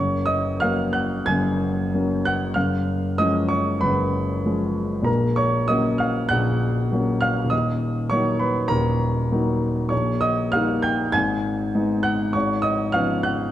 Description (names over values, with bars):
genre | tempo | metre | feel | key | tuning
classical, romantic character piece for solo piano | 98 BPM | 4/4 | uneven beats, rubato | F# major | A4 = 445 Hz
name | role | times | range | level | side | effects
warm grand piano | solo | 0.0-13.5 s | D#1 to G#6 | -20 LUFS | equal | none
room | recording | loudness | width
moderate scoring stage reverb, RT60 2.0 s | none | -20 LUFS | side -12 dB against mid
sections
0.0-13.5 A section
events
none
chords
0.0 F#; 2.6 C#7/F#; 5.1 F#/A#; 7.5 D#m; 9.9 D#7/A#; 11.1 G#m; 12.3 C#7/G#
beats
0.62 1.27 1.93 | 2.56 3.19 3.83 4.46 | 5.08 5.70 6.31 6.93 | 7.52 8.12 8.71 9.32 | 9.92 10.53 11.13 11.74 | 12.35 12.95